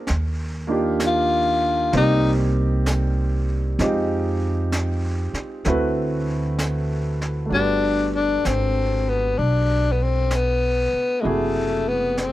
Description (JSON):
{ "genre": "jazz ballad", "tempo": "64 BPM", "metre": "4/4", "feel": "swing 66% on 8ths", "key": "G major from 7.5 s", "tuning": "A4 = 440 Hz", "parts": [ { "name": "warm grand piano", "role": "accompaniment", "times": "0.0-12.3 s", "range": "C3 to D5", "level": "-25 LUFS", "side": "right 2 dB", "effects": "none" }, { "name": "upright bass", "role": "bass", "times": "0.1-12.3 s", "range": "F#1 to F2", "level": "-23 LUFS", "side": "equal", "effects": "none" }, { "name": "jazz brush drum kit", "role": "drums", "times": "0.1-12.3 s", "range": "brushed snare drum, hi-hat, snare drum", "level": "-33 LUFS", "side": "equal", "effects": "none" }, { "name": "breathy tenor saxophone", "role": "melody", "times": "1.1-12.3 s", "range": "Ab3 to F4", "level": "-21 LUFS", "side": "left 3 dB", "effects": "none" } ], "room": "studio reverb", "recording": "dry, close 1970s-style studio recording", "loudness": "-19 LUFS", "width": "side -15 dB against mid", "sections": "0.0-7.5 A section; 7.5-12.3 B section", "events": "tenor saxophone solo 0.0-7.5", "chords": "0.1 Ebmaj9; 1.9 Cm9; 3.8 Fm9; 5.6 D13; 7.5 Gmaj9; 11.2 F#m7b5", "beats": "| 0.07 1.00 1.93 2.86 | 3.79 4.71 5.65 6.58 | 7.51 8.44 9.37 10.30 | 11.24 12.17" }